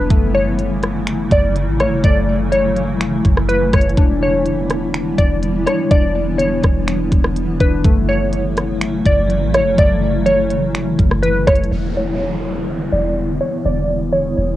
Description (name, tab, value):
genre	hip hop, atmospheric cloud-rap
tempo	124 BPM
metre	4/4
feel	half-time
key	E dorian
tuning	A4 = 440 Hz
part	glassy wavetable pluck	melody	0.0-14.6 s	B4 to D5	-19 LUFS	equal	chorus, low-pass filter, cassette tape, tape echo
part	granular cloud pad	sustained chords	0.0-14.6 s	C#3 to E4	-20 LUFS	equal	built-in reverb, sidechain pumping, low-pass filter, cassette tape
part	warbly lo-fi synth keys	arpeggios	0.0-11.7 s	A3 to D4	-25 LUFS	left 6 dB	chorus, low-pass filter, cassette tape, tape echo
part	soft 808-style bass	bass	0.0-14.6 s	E1 to A1	-21 LUFS	equal	none
part	downlifter	sound effects	0.0-0.1, 11.7-14.6 s	none	-31 LUFS	equal	none
part	trap drum kit	drums	0.1-11.7 s	finger snaps, hi-hat, kick drum, rim click	-15 LUFS	equal	cassette tape
room	light reverb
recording	home recording on cassette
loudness	-14 LUFS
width	side -14 dB against mid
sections	0.0-11.7 A section; 11.7-14.6 B section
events	filter sweep 11.7-14.6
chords	0.1 F#m7; 4.0 Em7; 7.8 F#m7; 11.7 Em7